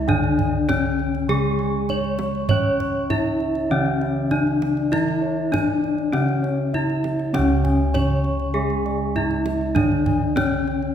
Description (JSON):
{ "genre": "Javanese gamelan", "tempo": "99 BPM", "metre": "4/4", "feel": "straight", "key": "unclear", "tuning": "A4 = 440 Hz", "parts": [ { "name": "gamelan-type bronze metallophone", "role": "melody", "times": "0.0-10.9 s", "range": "C#4 to C#5", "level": "-23 LUFS", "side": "left 2 dB", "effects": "none" }, { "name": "gamelan-type bronze metallophone", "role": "accompaniment", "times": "0.0-10.9 s", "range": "C#3 to C#4", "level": "-26 LUFS", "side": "right 1 dB", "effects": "none" }, { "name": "gamelan-type bronze metallophone", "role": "arpeggios", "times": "0.0-10.9 s", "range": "C#5 to C#6", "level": "-32 LUFS", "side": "right 4 dB", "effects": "none" }, { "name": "gamelan-type bossed gongs", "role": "bass", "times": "0.0-10.9 s", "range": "C#2 to C#5", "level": "-25 LUFS", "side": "equal", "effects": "none" }, { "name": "gamelan-type bossed gongs", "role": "arpeggios", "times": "0.1-10.7 s", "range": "C#5 to C#6", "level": "-34 LUFS", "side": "left 4 dB", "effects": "none" }, { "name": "kendang", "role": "percussion", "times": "0.1-10.9 s", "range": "none", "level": "-28 LUFS", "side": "right 2 dB", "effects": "none" } ], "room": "wet scoring stage reverb, RT60 2.0 s", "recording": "recorded in a church or concert hall", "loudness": "-19 LUFS", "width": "side -9 dB against mid", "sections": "0.0-10.9 A section", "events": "none", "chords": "none" }